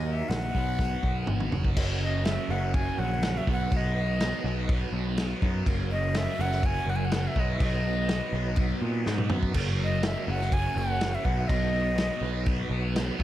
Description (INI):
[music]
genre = psychedelic rock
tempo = 123 BPM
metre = 4/4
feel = straight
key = F# major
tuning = A4 = 441 Hz
[part]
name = breathy bright jazz flute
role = melody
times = 0.0-12.5 s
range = D#5 to G#5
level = -32 LUFS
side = left 1 dB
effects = tape echo
[part]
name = bright tonewheel organ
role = sustained chords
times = 0.0-13.2 s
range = F#3 to B4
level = -38 LUFS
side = right 5 dB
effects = slow rotary speaker, chorus vibrato
[part]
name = thick fuzz guitar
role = riff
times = 0.0-13.2 s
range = F#2 to D#4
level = -34 LUFS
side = equal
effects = distortion, phaser
[part]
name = overdriven picked electric bass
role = bass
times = 0.0-13.2 s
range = F#1 to A#2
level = -29 LUFS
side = equal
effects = none
[part]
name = vintage drum kit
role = drums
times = 0.3-13.2 s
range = crash cymbal, hi-hat, kick drum, snare drum, toms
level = -30 LUFS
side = equal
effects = tape echo
[sound]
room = light reverb, studio reverb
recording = echo-heavy mix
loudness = -25 LUFS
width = side -13 dB against mid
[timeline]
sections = 0.0-1.8 A section; 1.8-13.2 B section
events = drum fill 0.8-1.8, 9.1-9.5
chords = 0.0 D#m; 0.5 Bmaj7; 1.8 F#; 3.5 B; 5.7 F#; 7.4 B; 9.5 F#; 11.2 B